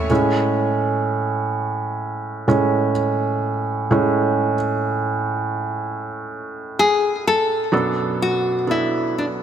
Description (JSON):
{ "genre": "pop", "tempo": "63 BPM", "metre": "4/4", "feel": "straight", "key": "A major", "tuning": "A4 = 440 Hz", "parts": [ { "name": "felt-muted upright piano", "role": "accompaniment", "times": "0.0-9.4 s", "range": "B1 to C#5", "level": "-20 LUFS", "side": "right 2 dB", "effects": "none" }, { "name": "twelve-string electric guitar", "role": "arpeggios", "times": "0.0-0.7 s", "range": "A3 to G#4", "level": "-34 LUFS", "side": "left 6 dB", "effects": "none" }, { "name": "nylon-string guitar", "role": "melody", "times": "6.8-9.2 s", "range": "D4 to A4", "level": "-19 LUFS", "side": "left 2 dB", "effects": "none" } ], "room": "moderate plate reverb, RT60 2.9 s", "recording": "bright 1980s-style digital production", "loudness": "-18 LUFS", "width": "side -9 dB against mid", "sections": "0.1-7.7 A section; 7.7-9.4 B section", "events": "felt piano solo 0.1-7.7", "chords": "0.1 Amaj7; 7.7 Bm7" }